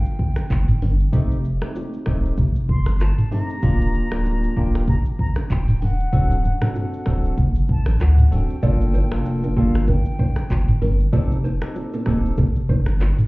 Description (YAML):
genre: afrobeats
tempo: 96 BPM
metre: 4/4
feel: swing 58% on 16ths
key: unclear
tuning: A4 = 439 Hz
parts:
  - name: mellow concert flute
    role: melody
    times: 0.0-10.8 s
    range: F5 to C6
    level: -34 LUFS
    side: left 1 dB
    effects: ping-pong delay
  - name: afro-pop drum kit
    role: drums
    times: 0.1-13.3 s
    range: finger snaps, handclaps, hi-hat, kick drum, rim click, shaker, toms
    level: -21 LUFS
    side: equal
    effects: none
  - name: congas and bongos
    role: percussion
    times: 0.2-13.2 s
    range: none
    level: -27 LUFS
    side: equal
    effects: none
  - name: warm sub bass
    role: bass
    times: 0.5-13.1 s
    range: D1 to D2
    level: -20 LUFS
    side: equal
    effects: none
  - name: barky tine electric piano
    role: accompaniment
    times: 1.1-12.4 s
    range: A3 to A4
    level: -28 LUFS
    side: left 1 dB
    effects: medium stereo tremolo
  - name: nylon-string guitar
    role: riff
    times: 8.6-12.8 s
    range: Bb3 to D5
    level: -27 LUFS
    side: right 2 dB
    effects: none
room: light reverb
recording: heard muffled through a wall, club reverb, EQ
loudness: -17 LUFS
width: side -22 dB against mid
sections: 0.0-13.3 A section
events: none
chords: 0.0 N.C.; 1.1 F7; 3.6 Ebmaj7; 6.1 D7; 8.6 Gm7; 11.1 F7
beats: 0.50 | 1.13 1.75 2.38 3.00 | 3.63 4.25 4.88 5.50 | 6.13 6.75 7.38 8.00 | 8.63 9.25 9.88 10.50 | 11.13 11.75 12.38 13.00